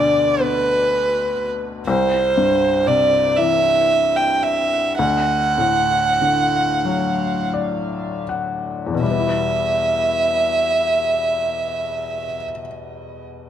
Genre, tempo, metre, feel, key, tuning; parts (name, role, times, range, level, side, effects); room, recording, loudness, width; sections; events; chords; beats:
celtic folk, Celtic slow air; 25-41 BPM (dotted quarters); 6/8; rubato; E minor; A4 = 440 Hz
dark fiddle; melody; 0.0-12.4 s; B4 to G5; -18 LUFS; right 2 dB; tape echo
felt-muted upright piano; accompaniment; 0.0-13.5 s; C2 to F#5; -23 LUFS; left 5 dB
moderate recital hall reverb, RT60 1.6 s; -16 LUFS; side -10 dB against mid
0.0-9.1 A section; 9.1-13.5 B section
slowing down 1.9-9.1; felt piano fill 6.8-9.1
0.0 Bm/D; 1.9 C; 5.0 D; 9.1 Em
0.39 | 1.85 3.36 | 4.99 6.85 | 9.05 11.38